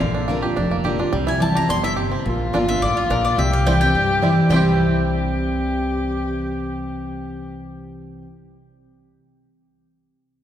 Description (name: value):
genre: bluegrass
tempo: 213 BPM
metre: 4/4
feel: straight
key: C mixolydian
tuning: A4 = 440 Hz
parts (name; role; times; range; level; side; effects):
- bluegrass banjo; melody; 0.0-8.2 s; D3 to G4; -27 LUFS; right 4 dB; none
- mandolin; melody; 0.0-8.2 s; F4 to C6; -25 LUFS; left 1 dB; none
- picked steel-string acoustic guitar; accompaniment; 0.0-8.3 s; F2 to F4; -22 LUFS; equal; none
- upright bass; bass; 0.0-8.2 s; F1 to G2; -25 LUFS; equal; none
- dark fiddle; second line; 2.2-7.5 s; F4 to G4; -25 LUFS; left 3 dB; none
room: wet church reverb, RT60 3.3 s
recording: recorded in a church or concert hall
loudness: -17 LUFS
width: side -10 dB against mid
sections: 0.0-2.3 A section; 2.3-4.5 B section; 4.5-6.8 C section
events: none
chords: 0.0 Bb; 1.1 C; 2.3 Bb; 3.4 C